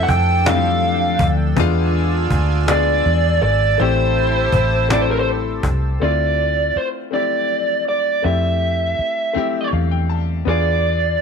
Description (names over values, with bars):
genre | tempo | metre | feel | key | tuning
slow six-eight R&B | 54 BPM (dotted quarters) | 6/8 | straight | D minor | A4 = 441 Hz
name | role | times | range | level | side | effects
biting lead guitar | melody | 0.0-11.2 s | Bb4 to G5 | -18 LUFS | right 2 dB | overdrive, slapback echo
clear baby grand piano | accompaniment | 0.0-11.2 s | F3 to A5 | -24 LUFS | left 13 dB | none
chorused pulse-width pad | sustained chords | 0.0-6.0 s | D4 to E6 | -28 LUFS | right 2 dB | none
mellow horn section | stabs | 0.0-5.6 s | C3 to A4 | -28 LUFS | right 14 dB | none
vintage muted fingered electric bass | bass | 0.0-11.2 s | G#1 to F2 | -19 LUFS | equal | none
cajon | drums | 0.1-5.8 s | none | -21 LUFS | equal | none
room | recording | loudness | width
light reverb, small room ambience | 1960s-style stereo with parts hard left and right | -15 LUFS | side -6 dB against mid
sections
0.0-6.0 A section; 6.0-11.2 B section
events
grand piano fill 9.3-10.5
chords
0.0 Fmaj9; 1.6 E7b9; 3.8 Am7; 6.0 Dm7; 8.2 Fmaj9; 10.5 E7b9